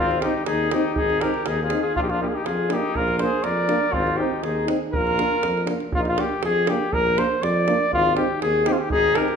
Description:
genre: balkan folk, Balkan brass band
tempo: 121 BPM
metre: 2/4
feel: straight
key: Bb mixolydian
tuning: A4 = 440 Hz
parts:
  - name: warm flugelhorn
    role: melody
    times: 0.0-9.4 s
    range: Eb4 to D5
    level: -22 LUFS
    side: left 1 dB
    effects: none
  - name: warm trumpet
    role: second line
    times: 0.0-5.7, 8.9-9.4 s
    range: C4 to Bb4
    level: -29 LUFS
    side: left 4 dB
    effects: none
  - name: warm tuba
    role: bass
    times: 0.0-9.2 s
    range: Ab1 to F2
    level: -28 LUFS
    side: equal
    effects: none
  - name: davul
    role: percussion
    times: 0.1-9.3 s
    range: none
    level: -30 LUFS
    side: right 3 dB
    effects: none
  - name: mellow euphonium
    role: accompaniment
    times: 0.2-9.3 s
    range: Bb3 to C4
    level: -31 LUFS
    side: right 7 dB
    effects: none
  - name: warm French horn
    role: accompaniment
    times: 0.2-9.3 s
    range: D4 to Eb4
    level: -30 LUFS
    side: left 5 dB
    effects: none
room: wet recital hall reverb, RT60 1.4 s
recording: minimal, uncompressed stereo recording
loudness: -19 LUFS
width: side -6 dB against mid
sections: 0.0-5.9 A section; 5.9-9.4 A section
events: none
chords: 0.0 Ab; 2.0 Bb; 4.0 Ab; 4.9 Bb; 7.9 Ab

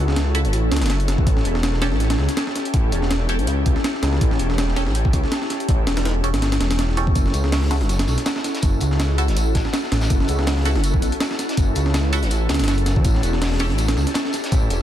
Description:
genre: drum and bass, jungle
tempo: 163 BPM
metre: 4/4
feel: swing 55% on 16ths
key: F# phrygian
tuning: A4 = 440 Hz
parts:
  - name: ethereal airy pad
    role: sustained chords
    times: 0.0-14.8 s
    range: C#4 to A4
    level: -27 LUFS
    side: left 1 dB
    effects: ensemble chorus, built-in reverb
  - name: dark detuned saw bass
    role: bass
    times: 0.0-14.8 s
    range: E1 to F#2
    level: -20 LUFS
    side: equal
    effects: none
  - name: breakbeat sampler-style drum kit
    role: drums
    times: 0.1-14.8 s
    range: hi-hat, kick drum, snare drum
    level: -22 LUFS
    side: equal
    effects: none
  - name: band-passed chord stab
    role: stabs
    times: 0.3-13.7 s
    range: C#4 to A4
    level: -31 LUFS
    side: right 2 dB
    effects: phaser, wide subtle chorus, vintage 12-bit sampler grit, dub echo
  - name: crunchy breakbeat drum kit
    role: drums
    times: 7.2-14.8 s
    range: hi-hat, snare drum, tambourine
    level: -33 LUFS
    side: left 1 dB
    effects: high-pass filter on hats, high-pass filter on snare, high-pass filter on perc, high-pass filter on room
room: studio ambience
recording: dense, heavily limited modern master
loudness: -18 LUFS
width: side -11 dB against mid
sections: 0.0-14.8 A section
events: none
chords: 0.0 F#m7; 1.3 A7; 7.2 F#m7; 13.0 A7

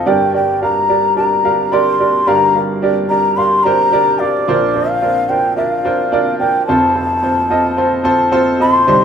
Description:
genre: pop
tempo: 109 BPM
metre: 4/4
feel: swing 56% on 16ths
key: G minor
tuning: A4 = 440 Hz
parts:
  - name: breathy bansuri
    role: melody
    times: 0.0-9.0 s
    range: D5 to C6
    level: -14 LUFS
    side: left 2 dB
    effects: none
  - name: clear upright piano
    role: accompaniment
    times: 0.0-9.0 s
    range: F1 to F5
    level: -15 LUFS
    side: right 2 dB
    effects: none
room: wet stone room reverb, RT60 1.0 s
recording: band playing live in one room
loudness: -12 LUFS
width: side -7 dB against mid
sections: 0.0-8.9 A section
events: none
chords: 0.1 Gm; 4.5 Bbadd9; 6.7 F

